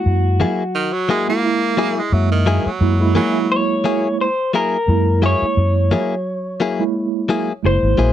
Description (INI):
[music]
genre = blues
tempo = 87 BPM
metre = 4/4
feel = swing 55% on 16ths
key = F# mixolydian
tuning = A4 = 439 Hz
[part]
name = electric guitar through a small old amp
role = melody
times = 0.0-8.1 s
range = F#4 to C#5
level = -21 LUFS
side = left 2 dB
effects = none
[part]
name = mellow tine electric piano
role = accompaniment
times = 0.0-8.1 s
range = G#3 to E5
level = -21 LUFS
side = right 5 dB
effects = medium stereo tremolo
[part]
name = vintage muted fingered electric bass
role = bass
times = 0.1-8.1 s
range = F#1 to F#3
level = -18 LUFS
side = equal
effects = none
[part]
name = direct-recorded clean electric guitar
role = stabs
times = 0.4-8.1 s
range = F#3 to G#4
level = -20 LUFS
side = left 5 dB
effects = none
[part]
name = edgy tenor saxophone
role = second line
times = 0.8-3.5 s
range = D#3 to A#3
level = -21 LUFS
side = right 5 dB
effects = none
[sound]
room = little or no reverb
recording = dry, close 1970s-style studio recording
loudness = -15 LUFS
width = side -11 dB against mid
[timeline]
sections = 0.0-8.1 A section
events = none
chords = 0.0 F#9